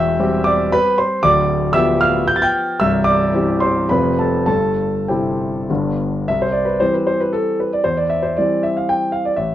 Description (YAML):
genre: classical, romantic triple-time dance for piano with dotted rhythms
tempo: 95-135 BPM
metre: 3/4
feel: rubato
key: C major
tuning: A4 = 440 Hz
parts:
  - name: warm concert grand piano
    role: solo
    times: 0.0-9.5 s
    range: C1 to A6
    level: -15 LUFS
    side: equal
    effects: none
room: light reverb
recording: worn, warbling old tape, cassette tape, warbly pitch drift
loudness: -15 LUFS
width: side -12 dB against mid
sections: 0.0-6.3 A section; 6.3-9.5 B section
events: none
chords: 0.0 C/E; 1.2 G7/D; 2.8 C; 3.9 F; 4.5 C/G; 5.7 G; 6.3 C; 7.8 C/E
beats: 0.19 0.73 | 1.22 1.73 2.27 | 2.79 3.32 3.90 | 4.47 5.08 5.69 | 6.27 6.80 7.34 | 7.84 8.36 8.88 | 9.35